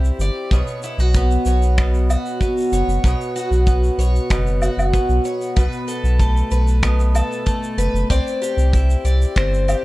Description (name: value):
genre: folktronica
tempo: 95 BPM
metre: 4/4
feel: straight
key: B minor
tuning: A4 = 440 Hz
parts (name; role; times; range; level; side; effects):
- picked twelve-string acoustic guitar; arpeggios; 0.0-9.8 s; B2 to D5; -22 LUFS; equal; low-pass filter, tape echo
- warm sub bass; bass; 0.0-9.7 s; F#1 to C2; -17 LUFS; equal; none
- shaker, finger snaps and woodblock; drums; 0.0-9.8 s; none; -29 LUFS; equal; none
- kick drum; drums; 0.5-9.5 s; none; -20 LUFS; equal; none
room: studio ambience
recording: dry, close 1970s-style studio recording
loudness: -16 LUFS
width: side -18 dB against mid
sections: 0.0-9.8 A section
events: none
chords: 0.0 Cadd9; 0.5 Bsus2; 5.6 F#madd11 (rootless); 8.1 Cadd9